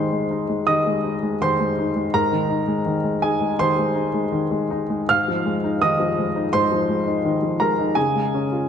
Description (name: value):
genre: neoclassical minimalist piano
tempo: 82 BPM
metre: 4/4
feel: rubato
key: Ab major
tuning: A4 = 440 Hz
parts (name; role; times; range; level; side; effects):
- warm grand piano; solo; 0.0-8.7 s; Ab2 to F6; -19 LUFS; equal; none
room: wet concert hall reverb, RT60 2.5 s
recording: dark, warm production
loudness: -19 LUFS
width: side -8 dB against mid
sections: 0.0-8.7 A section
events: none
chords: 0.0 Abadd9; 5.1 Fm7/Ab; 8.0 Db